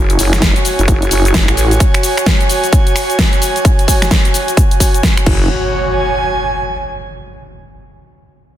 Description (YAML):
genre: bass house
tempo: 130 BPM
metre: 4/4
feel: swing 61% on 16ths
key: unclear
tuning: A4 = 440 Hz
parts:
  - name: vowel-sweep wobble bass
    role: bass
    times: 0.0-1.8, 5.3-5.5 s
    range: F#1 to A1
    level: -13 LUFS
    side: equal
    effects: chorus, tube saturation, sidechain pumping
  - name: downlifter and impact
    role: sound effects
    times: 0.0-1.8, 5.3-7.1 s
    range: none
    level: -26 LUFS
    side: equal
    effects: none
  - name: airy breathy pad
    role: texture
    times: 0.0-7.3 s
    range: F#4 to G#5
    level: -17 LUFS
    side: right 2 dB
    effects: chorus, sidechain pumping
  - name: big-room dance drum kit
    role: drums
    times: 0.1-5.4 s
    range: crash cymbal, finger snaps, hi-hat, shaker, snare drum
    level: -17 LUFS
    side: left 1 dB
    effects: studio ambience
  - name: electronic kick drum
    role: drums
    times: 0.4-5.4 s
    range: none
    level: -12 LUFS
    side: equal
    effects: studio ambience
room: light reverb, digital ambience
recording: dense, heavily limited modern master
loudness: -10 LUFS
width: side -12 dB against mid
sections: 0.0-5.5 A section; 5.5-7.3 B section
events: none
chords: 0.0 F#5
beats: 0.42 0.88 1.34 | 1.80 2.27 2.73 3.19 | 3.65 4.11 4.57 5.03 | 5.50 5.96 6.42 6.88